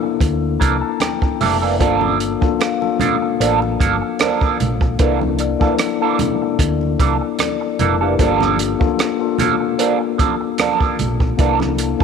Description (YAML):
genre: lush 1970s-style soul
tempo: 75 BPM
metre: 4/4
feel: swing 54% on 16ths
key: G dorian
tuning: A4 = 444 Hz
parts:
  - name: mellow tine electric piano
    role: accompaniment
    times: 0.0-12.0 s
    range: Bb3 to Bb5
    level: -20 LUFS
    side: left 12 dB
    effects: fast stereo tremolo
  - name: electric guitar at the edge of break-up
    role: riff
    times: 0.0-12.0 s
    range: E3 to A4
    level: -20 LUFS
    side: right 10 dB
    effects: wah
  - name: hollow-body short-scale fingered electric bass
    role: bass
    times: 0.2-12.0 s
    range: F1 to D2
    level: -22 LUFS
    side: equal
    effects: none
  - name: compact cocktail drum kit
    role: drums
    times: 0.2-12.0 s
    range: hi-hat, kick drum, rim click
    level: -19 LUFS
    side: right 2 dB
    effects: none
  - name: congas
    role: percussion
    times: 0.6-12.0 s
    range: none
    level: -27 LUFS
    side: right 7 dB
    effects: none
  - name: vibraphone with soft mallets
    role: texture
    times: 2.6-7.8 s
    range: D5 to F5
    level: -28 LUFS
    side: left 8 dB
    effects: none
room: moderate echo chamber reverb, RT60 2.1 s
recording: 1960s-style stereo with parts hard left and right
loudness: -15 LUFS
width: side -6 dB against mid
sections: 0.0-12.0 A section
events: tine electric piano fill 0.2-1.8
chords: 0.0 C13 (rootless); 1.8 Gm9; 5.0 C13; 8.2 Gm9; 11.4 C13